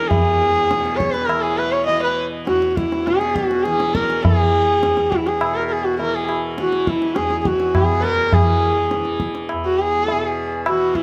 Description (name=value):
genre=indian classical, Hindustani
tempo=102 BPM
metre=7/4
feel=straight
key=E raga yaman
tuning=A4 = 441 Hz
part: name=warm sarangi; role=melody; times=0.0-11.0 s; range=E4 to D#5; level=-20 LUFS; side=equal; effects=tape echo
part: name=tanpura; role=drone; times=0.0-11.0 s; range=E2 to E3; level=-29 LUFS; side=equal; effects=none
part: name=tabla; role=percussion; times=0.1-11.0 s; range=none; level=-24 LUFS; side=equal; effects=none
room=moderate studio ambience, RT60 0.5 s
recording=none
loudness=-19 LUFS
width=mono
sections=0.0-11.0 A section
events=none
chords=none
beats=| 0.10 0.69 1.29 1.88 2.47 3.06 3.65 | 4.23 4.82 5.41 6.00 6.58 7.17 7.75 | 8.33 8.92 9.50 10.08 10.66